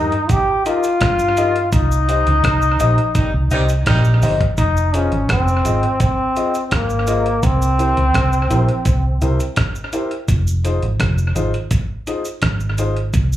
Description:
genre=roots reggae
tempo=84 BPM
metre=4/4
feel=straight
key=F minor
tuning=A4 = 440 Hz
part: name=bright trombone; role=melody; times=0.0-9.6 s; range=Bb3 to G4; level=-18 LUFS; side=left 1 dB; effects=tape echo, slapback echo
part: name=dark baby grand piano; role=stabs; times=0.0-12.9 s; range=Eb4 to Eb5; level=-23 LUFS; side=left 3 dB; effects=slapback echo
part: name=vintage muted fingered electric bass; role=bass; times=0.0-13.4 s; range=F1 to G2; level=-17 LUFS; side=equal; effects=none
part: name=breakbeat sampler-style drum kit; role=drums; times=0.1-13.3 s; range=hi-hat, kick drum, rim click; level=-20 LUFS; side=equal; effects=tape echo
part: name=cabasa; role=percussion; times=0.3-13.4 s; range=none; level=-36 LUFS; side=right 3 dB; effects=none
part: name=warm horn section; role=second line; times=3.2-4.4 s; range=C3 to Eb4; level=-23 LUFS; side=right 1 dB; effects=tape echo, slapback echo
room=light reverb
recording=live gig heard through the venue's PA, club reverb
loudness=-15 LUFS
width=side -13 dB against mid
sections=0.0-4.6 A section; 4.6-13.4 B section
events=band accent 1.7-4.6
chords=0.0 Eb; 1.7 Cm; 4.6 Fm7; 7.4 C7; 10.3 Fm7

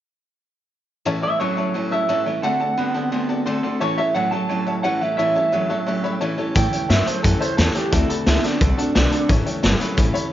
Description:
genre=rockabilly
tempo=175 BPM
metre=4/4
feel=straight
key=A mixolydian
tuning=A4 = 440 Hz
part: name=picked steel-string acoustic guitar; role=accompaniment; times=1.1-10.3 s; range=A2 to A4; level=-28 LUFS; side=left 4 dB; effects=none
part: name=warm upright piano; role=accompaniment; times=1.1-10.2 s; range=C#5 to C6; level=-29 LUFS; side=left 5 dB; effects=none
part: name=electric guitar through a small old amp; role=riff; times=1.1-10.3 s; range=A2 to B3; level=-25 LUFS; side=right 2 dB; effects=none
part: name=electric guitar through a small old amp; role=melody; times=1.2-9.3 s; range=D4 to A5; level=-22 LUFS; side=right 2 dB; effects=tape echo
part: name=upright bass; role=bass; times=6.6-10.2 s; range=G1 to A2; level=-20 LUFS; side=equal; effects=none
part: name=raw garage drum kit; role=drums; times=6.6-10.2 s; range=hi-hat, kick drum, snare drum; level=-20 LUFS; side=equal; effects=none
room=light reverb, small room reverb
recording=nothing above 7.5 kHz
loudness=-18 LUFS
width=side -12 dB against mid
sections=1.1-6.6 A section; 6.6-10.3 B section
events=upright piano fill 5.9-6.6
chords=1.1 A7; 2.4 D7; 3.8 A7; 7.9 D7; 9.3 A7

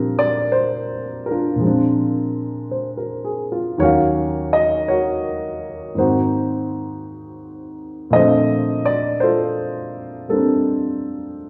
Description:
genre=jazz ballad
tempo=55 BPM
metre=4/4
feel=swing 68% on 8ths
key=Bb major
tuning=A4 = 440 Hz
part: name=dark grand piano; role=solo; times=0.0-11.5 s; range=Eb2 to F5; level=-20 LUFS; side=equal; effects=none
room=wet large studio reverb, RT60 1.3 s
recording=band playing live in one room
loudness=-20 LUFS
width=mono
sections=0.0-11.5 A section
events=none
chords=0.0 Bb69; 1.6 Bb7; 3.8 Ebm7; 5.9 Ab9; 8.1 Bbmaj9

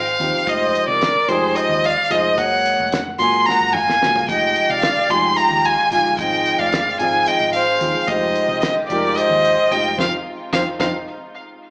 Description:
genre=electric jazz fusion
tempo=220 BPM (eighths)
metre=7/8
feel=straight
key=F dorian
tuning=A4 = 440 Hz
part: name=bright violin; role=melody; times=0.0-10.9 s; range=C5 to C6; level=-19 LUFS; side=equal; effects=slapback echo
part: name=breathy jazz flute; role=second line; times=0.0-10.9 s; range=Ab4 to Ab5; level=-26 LUFS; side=equal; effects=slapback echo
part: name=hollow-body short-scale fingered electric bass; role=bass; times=0.0-10.9 s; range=F1 to F2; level=-36 LUFS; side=equal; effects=none
part: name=dark concert grand piano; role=accompaniment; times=0.2-10.9 s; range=F3 to Ab4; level=-28 LUFS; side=equal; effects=slapback echo
part: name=damped 70s drum kit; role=drums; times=0.2-10.9 s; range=hi-hat, kick drum, snare drum, toms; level=-28 LUFS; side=equal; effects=none
part: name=warm chamber string section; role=sustained chords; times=4.3-11.7 s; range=C3 to G4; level=-34 LUFS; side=equal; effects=none
room=light reverb, small room ambience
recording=live gig heard through the venue's PA, club reverb, small speaker sound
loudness=-18 LUFS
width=mono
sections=0.0-11.7 A section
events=drum fill 3.5-4.3, 10.3-11.7; band accent 10.0-11.7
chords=0.0 Fm9; 2.4 Gbmaj9; 4.3 Fm9; 6.2 Ab6; 8.1 Fm9; 10.0 Fm7

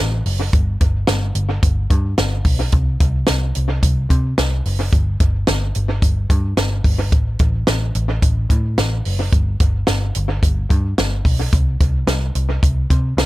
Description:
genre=jangly indie pop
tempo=109 BPM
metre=4/4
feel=straight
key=unclear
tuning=A4 = 440 Hz
part: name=vintage muted picked electric bass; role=bass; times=0.0-13.3 s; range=F#1 to C3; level=-19 LUFS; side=equal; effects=none
part: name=compact cocktail drum kit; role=drums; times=0.3-13.3 s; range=hi-hat, kick drum, snare drum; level=-17 LUFS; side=equal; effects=analog delay
room=little or no reverb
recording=echo-heavy mix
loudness=-15 LUFS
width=side -18 dB against mid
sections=0.0-13.3 A section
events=none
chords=none

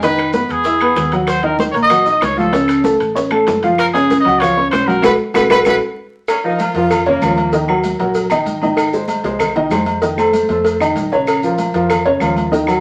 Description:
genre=latin, salsa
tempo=192 BPM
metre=4/4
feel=straight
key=Bb minor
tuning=A4 = 439 Hz
part: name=clear trumpet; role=melody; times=0.0-5.7 s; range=G#4 to Eb5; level=-18 LUFS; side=equal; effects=none
part: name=warm upright piano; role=accompaniment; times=0.0-12.8 s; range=Db3 to E6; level=-18 LUFS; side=equal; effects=none
part: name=hollow-body short-scale fingered electric bass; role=bass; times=0.0-12.8 s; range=E1 to F2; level=-30 LUFS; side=equal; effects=none
part: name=bongos and cowbell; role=percussion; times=0.0-12.7 s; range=none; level=-23 LUFS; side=equal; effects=none
part: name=congas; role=percussion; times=0.0-12.8 s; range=none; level=-28 LUFS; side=equal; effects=none
part: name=maracas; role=percussion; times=0.0-12.8 s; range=none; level=-40 LUFS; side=equal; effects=none
part: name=timbales and agogo bells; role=percussion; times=0.0-12.8 s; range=none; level=-25 LUFS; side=equal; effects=none
part: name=claves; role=percussion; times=0.2-12.8 s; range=none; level=-30 LUFS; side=equal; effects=none
part: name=clear saxophone section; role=second line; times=6.3-7.7 s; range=Bb3 to F4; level=-27 LUFS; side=equal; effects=none
room=wet studio reverb, RT60 0.6 s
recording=vinyl crackle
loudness=-15 LUFS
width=mono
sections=0.0-6.3 A section; 6.3-12.8 B section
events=band accent 5.0-6.3; drum fill 5.8-6.3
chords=0.0 Emaj7; 0.7 Eadd9; 1.3 Ebm9; 2.5 Dbaug; 3.8 Gb5; 5.0 B5; 6.3 Bbm; 7.5 Ebm; 8.8 Ab; 10.0 F7; 11.3 Bbm

